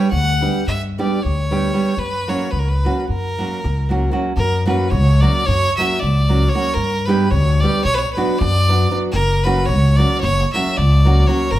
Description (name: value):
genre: balkan folk, Balkan wedding band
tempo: 226 BPM (eighths)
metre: 9/8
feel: straight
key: F# phrygian dominant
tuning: A4 = 440 Hz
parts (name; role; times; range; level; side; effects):
- clear fiddle; melody; 0.0-11.6 s; A#4 to F#5; -21 LUFS; right 1 dB; none
- nylon-string guitar; accompaniment; 0.0-11.5 s; F#3 to G4; -21 LUFS; right 2 dB; none
- upright bass; bass; 0.1-11.6 s; F#1 to G2; -17 LUFS; equal; none
room: moderate large studio reverb, RT60 1.3 s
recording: band playing live in one room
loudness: -15 LUFS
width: side -14 dB against mid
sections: 0.0-4.4 A section; 4.4-11.6 B section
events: none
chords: 0.0 G; 2.0 F#; 6.8 G; 7.8 Bm; 9.1 F#